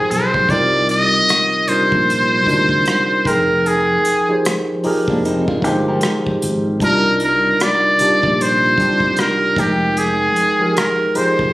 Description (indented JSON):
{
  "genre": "R&B, neo-soul",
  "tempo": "76 BPM",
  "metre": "4/4",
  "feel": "swing 61% on 16ths",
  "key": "C minor",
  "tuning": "A4 = 441 Hz",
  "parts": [
    { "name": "trumpet with metal mute", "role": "melody", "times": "0.0-11.5 s", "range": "G4 to Eb5", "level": "-15 LUFS", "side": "equal", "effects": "slapback echo" },
    { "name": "tine electric piano", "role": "accompaniment", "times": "0.0-11.5 s", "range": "C3 to G5", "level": "-19 LUFS", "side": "equal", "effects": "medium stereo tremolo" },
    { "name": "sustaining fretless electric bass", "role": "bass", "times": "0.1-11.5 s", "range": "F1 to D2", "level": "-22 LUFS", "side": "equal", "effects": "none" },
    { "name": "unplugged drum kit", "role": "drums", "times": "0.1-11.5 s", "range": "hi-hat, kick drum, rim click", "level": "-24 LUFS", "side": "equal", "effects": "none" },
    { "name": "electric guitar at the edge of break-up", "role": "second line", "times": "5.1-6.8 s", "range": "Bb3 to Bb4", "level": "-22 LUFS", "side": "right 2 dB", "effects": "spring reverb" }
  ],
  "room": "light reverb",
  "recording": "recorded on a phone in the room, studio reverb, compression",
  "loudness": "-13 LUFS",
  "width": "side -17 dB against mid",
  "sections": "0.0-11.5 A section",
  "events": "none",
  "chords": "0.5 Cm11; 3.2 Fm11; 6.8 Cm11; 9.6 Fm11"
}